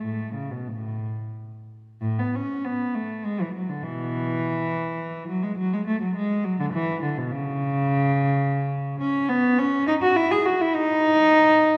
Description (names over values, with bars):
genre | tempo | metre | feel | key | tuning
classical, baroque-style suite movement for unaccompanied cello | 86-107 BPM | 3/4 | rubato | A major | A4 = 440 Hz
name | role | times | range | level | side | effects
dark cello | solo | 0.0-11.8 s | A2 to G#4 | -24 LUFS | equal | none
room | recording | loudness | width
wet concert hall reverb, RT60 2.0 s | heard from further back in the room | -24 LUFS | mono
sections
0.0-2.0 A section; 2.0-11.8 B section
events
none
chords
none